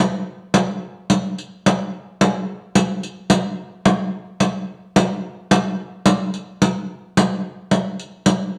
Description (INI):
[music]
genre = italian folk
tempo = 73 BPM (dotted quarters)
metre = 6/8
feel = straight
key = none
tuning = none
[part]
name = riq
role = percussion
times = 0.5-8.5 s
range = none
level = -19 LUFS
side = equal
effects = none
[sound]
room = wet large studio reverb, RT60 0.9 s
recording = none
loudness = -21 LUFS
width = mono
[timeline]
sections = 0.0-8.6 A section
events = none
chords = none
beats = 0.26 | 1.09 1.92 | 2.74 3.57 | 4.39 5.22 | 6.06 6.88 | 7.71